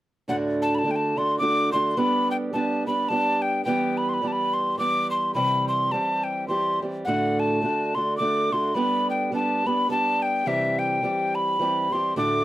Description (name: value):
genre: celtic folk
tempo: 106 BPM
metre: 3/4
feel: swing 58% on 8ths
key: D mixolydian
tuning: A4 = 440 Hz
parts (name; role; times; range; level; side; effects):
- mellow hollow mid whistle; melody; 0.3-12.4 s; E5 to D6; -23 LUFS; left 1 dB; none
- fingerpicked acoustic archtop guitar; accompaniment; 0.3-12.4 s; D2 to G4; -26 LUFS; right 2 dB; none
room: light reverb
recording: close, detailed microphones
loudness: -21 LUFS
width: side -15 dB against mid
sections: 0.3-12.4 A section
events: none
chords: 0.3 D; 2.0 G; 3.7 Em; 5.4 C; 7.1 D; 8.8 G; 10.5 C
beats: | 0.28 0.84 1.41 | 1.97 2.54 3.10 | 3.67 4.24 4.80 | 5.37 5.93 6.50 | 7.06 7.63 8.19 | 8.76 9.33 9.89 | 10.46 11.02 11.59 | 12.15